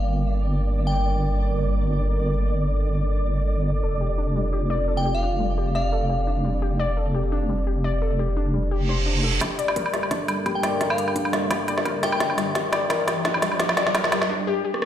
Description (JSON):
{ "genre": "half-time drum and bass", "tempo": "172 BPM", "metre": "4/4", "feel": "swing 54% on 16ths, half-time", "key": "G minor", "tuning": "A4 = 442 Hz", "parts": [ { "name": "dark analog pad", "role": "sustained chords", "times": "0.0-14.3 s", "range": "G3 to Bb4", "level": "-31 LUFS", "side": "right 1 dB", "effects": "chorus, phaser, sidechain pumping" }, { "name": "deep soft wobble bass", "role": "bass", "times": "0.0-9.4 s", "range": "F1 to G1", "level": "-23 LUFS", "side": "equal", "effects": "chorus" }, { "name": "flickering grainy texture", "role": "texture", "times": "0.0-9.4 s", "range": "D5", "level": "-34 LUFS", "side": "right 2 dB", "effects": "built-in reverb" }, { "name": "glassy synth bell", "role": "melody", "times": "0.9-1.4, 5.0-6.2, 10.6-12.5 s", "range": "F5 to G5", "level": "-30 LUFS", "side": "left 1 dB", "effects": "chorus, vintage 12-bit sampler grit, low-pass filter, dub echo" }, { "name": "warbly dusty pluck", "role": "arpeggios", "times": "3.8-14.9 s", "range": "G3 to D5", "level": "-28 LUFS", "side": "left 4 dB", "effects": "chorus, tape echo" }, { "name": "reverse cymbal and riser", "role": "sound effects", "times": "8.8-14.3 s", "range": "none", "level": "-31 LUFS", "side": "right 2 dB", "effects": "none" }, { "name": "electronic kick drum", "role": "drums", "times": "9.4-14.0 s", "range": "none", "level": "-34 LUFS", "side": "equal", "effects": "high-pass filter on kick" }, { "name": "organic electronic drum kit", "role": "drums", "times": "9.4-14.9 s", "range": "hi-hat, rim click, snare drum, woodblock", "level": "-23 LUFS", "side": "right 1 dB", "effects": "overdrive" } ], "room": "light reverb", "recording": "played on a big sound system in a bare room, stone room reverb", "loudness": "-21 LUFS", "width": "side -11 dB against mid", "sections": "0.0-9.4 A section; 9.4-14.9 B section", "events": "reverse cymbal 8.8-9.4; build-up 9.4-14.9; drum fill 9.4-14.3; riser 9.4-14.3; break 14.3-14.9", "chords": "0.0 Gm; 3.8 F; 9.4 Gm" }